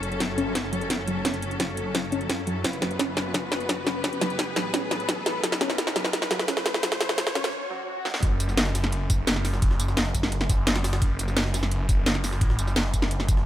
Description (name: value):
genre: dark technical drum and bass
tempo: 172 BPM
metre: 4/4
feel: straight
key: F# minor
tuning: A4 = 441 Hz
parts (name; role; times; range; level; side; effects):
- bright studio string section; sustained chords; 0.0-7.5 s; F#3 to B4; -32 LUFS; left 2 dB; sidechain pumping
- snarling distorted saw bass; bass; 0.0-13.4 s; F#1 to F#2; -29 LUFS; equal; distortion, overdrive, sidechain pumping
- drum and bass drum kit; drums; 0.0-13.4 s; hi-hat, snare drum, tambourine; -26 LUFS; equal; none
- riser and swell; sound effects; 1.8-8.2 s; none; -35 LUFS; equal; none
- warbly dusty pluck; arpeggios; 0.2-8.1 s; F#3 to C#4; -33 LUFS; equal; chorus, sidechain pumping, tape echo
- electronic kick drum; drums; 0.2-13.4 s; none; -24 LUFS; equal; high-pass filter on kick, high-pass filter on room
- jungle sampler-style drum kit; drums; 8.2-13.5 s; hi-hat, ride cymbal, snare drum; -37 LUFS; right 1 dB; none
room: light reverb, digital ambience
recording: high-pass filter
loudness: -23 LUFS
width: side -12 dB against mid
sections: 0.0-8.2 A section; 8.2-13.5 B section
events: build-up 0.0-8.2; drum fill 0.0-7.5, 8.1; filter sweep on synth arpeggio sound 0.0-8.2; riser 1.8-7.5; break 7.5-8.2; swell 7.5-8.2; drop 8.2-13.5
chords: 0.0 F#m; 8.2 N.C.